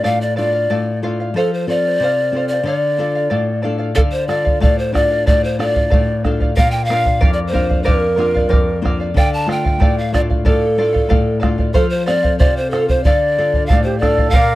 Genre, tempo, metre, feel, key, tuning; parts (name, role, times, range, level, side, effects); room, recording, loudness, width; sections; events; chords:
andean folk, Andean ensemble; 92 BPM; 2/4; straight; D minor; A4 = 440 Hz
breathy pan flute; melody; 0.0-14.6 s; A4 to A5; -18 LUFS; equal
charango; accompaniment; 0.0-14.6 s; A4 to F5; -23 LUFS; equal
nylon-string guitar; accompaniment; 0.0-14.6 s; F2 to A4; -20 LUFS; left 2 dB
bombo; percussion; 4.0-14.5 s; -16 LUFS; right 1 dB
breathy large quena; second line; 13.7-14.6 s; G4 to D5; -21 LUFS; right 4 dB
small room ambience; dry, close 1970s-style studio recording; -14 LUFS; side -16 dB against mid
0.0-4.0 A section; 4.0-14.3 A section
0.0 Dm; 1.4 F; 2.7 Dm; 6.6 Bb; 9.2 Dm; 11.8 F; 13.0 Dm